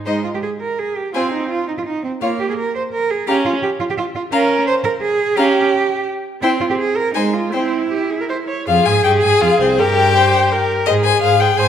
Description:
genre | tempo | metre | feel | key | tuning
quick classical-period movement for string quartet | 154-175 BPM | 3/4 | rubato | Ab major, F minor from 4.3 s | A4 = 438 Hz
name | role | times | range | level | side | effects
warm violin | melody | 0.1-11.7 s | C5 to Bb5 | -18 LUFS | left 8 dB | none
warm violin | second line | 0.1-11.7 s | C4 to F5 | -23 LUFS | left 3 dB | none
rich viola | accompaniment | 0.1-11.7 s | Ab3 to Db5 | -19 LUFS | right 2 dB | none
warm cello | bass | 0.1-11.7 s | C2 to C5 | -19 LUFS | right 4 dB | none
room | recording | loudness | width
moderate scoring stage reverb, RT60 1.5 s | none | -15 LUFS | side -9 dB against mid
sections
0.1-8.7 A section; 8.7-11.7 B section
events
none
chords
0.1 Ab5; 1.1 Ab/C (rootless); 2.2 N.C.; 3.3 Bbm/Db; 5.4 G(b5, no3)/Db; 6.4 C5; 7.1 Fm/Ab; 7.5 C; 8.7 Fm; 9.8 Gmadd11; 10.9 Ab

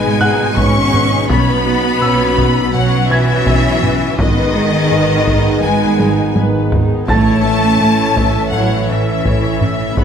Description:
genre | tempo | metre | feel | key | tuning
cinematic, hybrid orchestral and electronic film score | 83 BPM | 4/4 | straight | unclear | A4 = 440 Hz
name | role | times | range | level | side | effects
warm symphonic violin section | melody | 0.0-10.0 s | D#5 to C#6 | -23 LUFS | left 4 dB | none
warm symphonic violin section | second line | 0.0-10.0 s | D#5 to C#6 | -20 LUFS | left 5 dB | none
dark symphonic viola section | accompaniment | 0.0-10.0 s | B3 to E5 | -24 LUFS | equal | none
hollow soft pad | sustained chords | 0.0-10.0 s | B2 to C#5 | -25 LUFS | equal | none
mellow French horn section | sustained chords | 0.0-10.0 s | C#4 to A4 | -24 LUFS | left 4 dB | none
mellow trombone section | sustained chords | 0.0-10.0 s | B2 to C#4 | -23 LUFS | right 4 dB | none
harp-like synth pluck | arpeggios | 0.0-10.0 s | G#3 to B4 | -25 LUFS | left 2 dB | none
rubbery square bass | riff | 0.0-10.0 s | G#2 to B3 | -21 LUFS | right 2 dB | none
warm symphonic cello section | bass | 0.0-10.0 s | D#3 to C#4 | -18 LUFS | right 1 dB | none
warm symphonic double bass section | bass | 0.0-10.0 s | G#1 to B1 | -21 LUFS | right 3 dB | none
warm baby grand piano | texture | 0.0-10.0 s | F#5 to A6 | -23 LUFS | equal | none
solo taiko drums | drums | 0.6-10.0 s | none | -20 LUFS | equal | none
room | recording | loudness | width
moderate scoring stage reverb, RT60 1.9 s | none | -11 LUFS | side -7 dB against mid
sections
0.0-10.0 A section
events
drum fill 6.0-7.1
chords
0.0 G#m; 1.3 Badd9; 4.2 G#m; 7.1 A

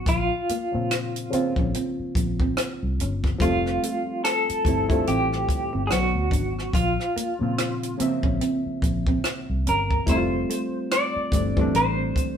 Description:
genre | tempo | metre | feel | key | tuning
R&B, neo-soul | 72 BPM | 4/4 | swing 59% on 16ths | unclear | A4 = 440 Hz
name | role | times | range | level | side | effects
electric guitar through a small old amp | melody | 0.0-12.4 s | F4 to D5 | -26 LUFS | right 1 dB | tremolo
barky reed electric piano | accompaniment | 0.0-12.4 s | Db3 to E5 | -28 LUFS | left 1 dB | phaser
vintage muted fingered electric bass | bass | 0.1-12.1 s | F1 to Bb2 | -28 LUFS | left 1 dB | none
compact cocktail drum kit | drums | 0.1-12.4 s | hi-hat, kick drum, rim click | -26 LUFS | equal | none
hollow-body jazz guitar | second line | 0.5-12.2 s | A3 to D4 | -31 LUFS | right 5 dB | none
room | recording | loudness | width
moderate studio reverb, RT60 0.8 s | band playing live in one room | -21 LUFS | side -8 dB against mid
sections
0.0-12.4 A section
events
none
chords
0.1 Bbmadd9; 3.4 Fmaj9; 5.9 Bmadd9; 6.7 Bbmadd9; 10.1 Fmaj9

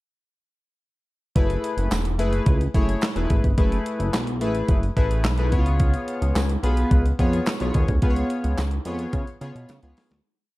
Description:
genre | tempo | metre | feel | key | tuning
early-eighties boogie funk | 108 BPM | 4/4 | straight | F# minor | A4 = 439 Hz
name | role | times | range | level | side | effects
chorused polysynth | accompaniment | 1.4-10.1 s | A3 to C#5 | -26 LUFS | left 2 dB | tremolo
chorused synth bass | bass | 1.4-10.2 s | E1 to C#3 | -23 LUFS | equal | none
clean 12-bit digital drum machine | drums | 1.4-10.2 s | handclaps, hi-hat, kick drum, snare drum | -22 LUFS | equal | none
tambourine | percussion | 1.9-9.8 s | none | -41 LUFS | right 10 dB | none
room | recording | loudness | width
light reverb | dark, warm production | -20 LUFS | side -19 dB against mid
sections
1.4-10.2 verse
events
fade-out 8.0-10.2; drum fill 9.7-10.2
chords
1.4 F#m11; 5.5 C#7

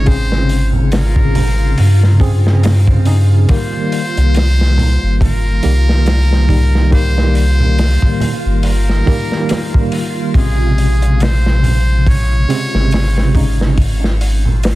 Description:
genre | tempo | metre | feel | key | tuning
trip hop | 70 BPM | 4/4 | swing 56% on 16ths | C phrygian | A4 = 438 Hz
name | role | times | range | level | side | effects
trumpet with metal mute | melody | 0.0-13.8 s | Ab4 to Db5 | -23 LUFS | equal | tape echo
bell-like tine electric piano | accompaniment | 0.0-13.8 s | C3 to Ab4 | -18 LUFS | equal | medium stereo tremolo, vintage 12-bit sampler grit, tape echo
soft dub sub bass | bass | 0.0-14.8 s | G1 to G2 | -12 LUFS | equal | none
backwards swelling texture | texture | 0.0-14.8 s | F4 | -28 LUFS | right 1 dB | built-in reverb
crunchy breakbeat drum kit | drums | 0.1-14.8 s | hi-hat, kick drum, snare drum | -17 LUFS | equal | none
congas and tube shaker | percussion | 0.7-14.8 s | none | -21 LUFS | right 3 dB | none
room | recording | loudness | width
small room ambience | dense, heavily limited modern master | -11 LUFS | side -17 dB against mid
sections
0.0-14.8 A section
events
none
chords
0.0 Bbm7; 3.5 Cm7; 10.3 Bbm7

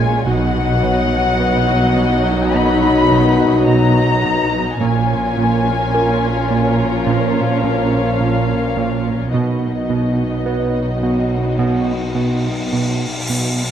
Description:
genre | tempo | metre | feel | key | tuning
cinematic, suspense film score | 53 BPM | 4/4 | straight | unclear | A4 = 439 Hz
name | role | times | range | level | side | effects
muted chamber violin section | melody | 0.0-13.2 s | D#5 to B5 | -22 LUFS | left 4 dB | none
muted symphonic violin section | second line | 0.0-13.6 s | F#4 to D#5 | -26 LUFS | left 3 dB | none
muted symphonic viola section | accompaniment | 0.0-13.6 s | F#3 to F4 | -24 LUFS | equal | none
clear trombone section | sustained chords | 0.0-13.5 s | F#2 to Ab3 | -24 LUFS | right 2 dB | none
mellow French horn section | sustained chords | 0.0-13.5 s | Bb3 to F4 | -22 LUFS | left 4 dB | none
fat analog bass | riff | 0.0-13.6 s | Bb2 to B3 | -20 LUFS | right 4 dB | none
muted symphonic cello section | bass | 0.0-13.6 s | Bb2 to B2 | -23 LUFS | right 1 dB | none
muted symphonic double bass section | bass | 0.0-13.6 s | Bb1 to B1 | -23 LUFS | right 2 dB | none
large celesta | texture | 0.0-13.7 s | Bb4 to Db5 | -32 LUFS | left 6 dB | none
cymbal swell | sound effects | 11.2-13.7 s | none | -26 LUFS | left 1 dB | none
room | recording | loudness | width
light reverb | close, detailed microphones | -14 LUFS | side -9 dB against mid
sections
0.0-13.7 A section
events
cymbal swell 11.2-13.7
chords
0.3 B; 4.8 Bbm7; 9.3 B

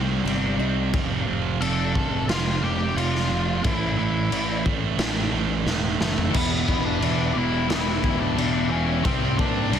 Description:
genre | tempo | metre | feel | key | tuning
quiet-loud alternative rock | 89 BPM | 4/4 | straight | unclear | A4 = 439 Hz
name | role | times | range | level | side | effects
picked steel-string acoustic guitar | arpeggios | 0.0-0.9 s | C3 to Eb4 | -31 LUFS | left 12 dB | slapback echo
thick fuzz guitar | riff | 0.0-9.8 s | E2 to C4 | -26 LUFS | right 8 dB | distortion
fuzz picked electric bass | bass | 0.0-9.8 s | E1 to A#2 | -28 LUFS | left 1 dB | overdrive
raw garage drum kit | drums | 0.3-9.8 s | crash cymbal, kick drum, snare drum, toms | -26 LUFS | left 1 dB | none
octave-fuzz lead guitar | melody | 1.6-9.8 s | A3 to A5 | -29 LUFS | left 3 dB | distortion, slapback echo
raw garage guitar | riff | 6.3-9.8 s | C3 to G4 | -28 LUFS | left 16 dB | overdrive
room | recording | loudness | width
small room ambience | dense, heavily limited modern master | -21 LUFS | side -8 dB against mid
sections
0.0-6.3 A section; 6.3-9.8 B section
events
drum fill 5.7-6.3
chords
0.0 Cm; 0.9 F; 3.6 A5; 6.3 Em; 9.1 Cm

